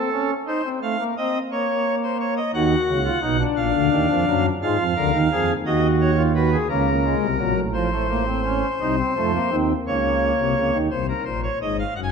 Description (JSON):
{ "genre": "classical, baroque-style 3-part fugue for pipe organ", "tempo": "57 BPM (dotted quarters)", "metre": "6/8", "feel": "straight", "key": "unclear", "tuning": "A4 = 440 Hz", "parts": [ { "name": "pipe organ, cornet", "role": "solo", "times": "0.0-12.1 s", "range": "Gb1 to Ab5", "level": "-19 LUFS", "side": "equal", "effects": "none" } ], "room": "wet recital hall reverb, RT60 1.8 s", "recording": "none", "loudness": "-19 LUFS", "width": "side -6 dB against mid", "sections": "0.0-10.9 A section; 10.9-12.1 B section", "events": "none", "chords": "0.5 F7; 1.5 Bbm; 2.5 Ebm; 3.6 Bb; 4.6 Bb7; 5.7 Ebm; 6.7 Bbm/Db; 7.8 F/A; 8.8 F7/C; 9.9 Bbm/Db; 10.9 Fm", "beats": "| 0.47 1.50 | 2.53 3.57 | 4.61 5.65 | 6.70 7.75 | 8.80 9.86 | 10.91 11.96" }